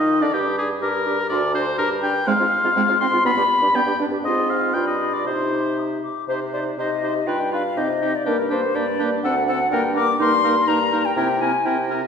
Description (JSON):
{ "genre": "quick classical-period movement for wind quintet", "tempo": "122 BPM", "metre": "2/4", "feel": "rubato", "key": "C minor", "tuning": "A4 = 440 Hz", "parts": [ { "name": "silver concert flute", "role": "melody", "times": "0.0-11.9 s", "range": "Bb4 to Eb6", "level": "-24 LUFS", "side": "left 4 dB", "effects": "none" }, { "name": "clear oboe", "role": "second line", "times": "0.0-12.0 s", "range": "G4 to C6", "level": "-23 LUFS", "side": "left 2 dB", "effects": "none" }, { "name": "clear French horn", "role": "accompaniment", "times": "0.0-12.0 s", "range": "Bb3 to Eb4", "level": "-28 LUFS", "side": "left 2 dB", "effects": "none" }, { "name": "clear clarinet", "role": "accompaniment", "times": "0.0-12.0 s", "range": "Ab3 to G4", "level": "-26 LUFS", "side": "right 4 dB", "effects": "none" }, { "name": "warm bassoon", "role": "bass", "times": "0.0-12.0 s", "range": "D2 to Eb3", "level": "-27 LUFS", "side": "right 2 dB", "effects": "none" } ], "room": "wet concert hall reverb, RT60 1.7 s", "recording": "recorded in a church or concert hall", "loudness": "-18 LUFS", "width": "side -6 dB against mid", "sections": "0.0-6.3 A section; 6.3-12.1 A section", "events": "none", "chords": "0.3 Gm; 1.3 D7; 1.8 Gm; 2.3 Fm/Ab; 3.3 G; 4.2 Fm/Ab; 4.7 G7; 5.3 Cm; 7.3 G7; 7.8 Cm; 8.3 Gm; 9.2 D7; 9.7 Gm; 10.2 Eb/G; 11.2 C7" }